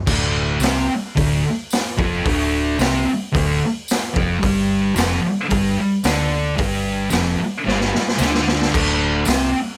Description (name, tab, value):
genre	garage rock duo or trio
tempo	111 BPM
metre	4/4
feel	straight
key	unclear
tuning	A4 = 441 Hz
part	thick fuzz guitar	riff	0.1-9.6 s	D2 to D4	-22 LUFS	equal	distortion
part	vintage muted fingered electric bass	bass	0.1-9.6 s	D1 to D2	-27 LUFS	equal	none
part	raw garage drum kit	drums	0.1-9.4 s	crash cymbal, hi-hat, kick drum, snare drum	-24 LUFS	equal	none
part	tambourine	percussion	0.6-9.4 s	none	-33 LUFS	equal	none
room	light reverb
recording	none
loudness	-19 LUFS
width	mono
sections	0.1-8.7 A section; 8.7-9.8 A section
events	drum fill 7.7-8.7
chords	0.1 Dm7; 4.4 G5; 8.7 D7(no3)